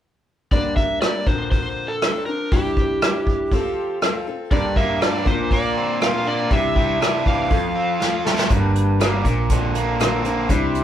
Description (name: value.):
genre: folk rock and heartland rock.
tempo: 120 BPM.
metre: 4/4.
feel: straight.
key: unclear.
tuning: A4 = 441 Hz.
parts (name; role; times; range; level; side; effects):
overdriven slide guitar; melody; 0.5-8.2 s; G4 to F5; -24 LUFS; right 1 dB; none.
picked steel-string acoustic guitar; accompaniment; 0.5-10.8 s; G2 to Bb4; -26 LUFS; left 3 dB; none.
soft brush drum kit; drums; 0.5-10.8 s; hi-hat, kick drum, rim click, snare drum; -21 LUFS; equal; none.
crunchy overdriven guitar; riff; 4.5-10.8 s; F2 to F4; -22 LUFS; right 1 dB; none.
hollow-body short-scale picked electric bass; bass; 8.5-10.8 s; G1 to C2; -23 LUFS; right 1 dB; none.
room: wet small room reverb, RT60 0.5 s.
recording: band playing live in one room.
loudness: -18 LUFS.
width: side -10 dB against mid.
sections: 0.5-8.5 A section; 8.5-10.8 B section.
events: drum fill 8.0-8.5.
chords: 0.5 Gm; 1.3 Bbadd9; 2.5 Cadd9; 3.5 F; 4.5 Gm; 5.3 Bbadd9; 6.5 Cadd9; 7.5 F; 8.5 Gm; 9.3 Bbadd9.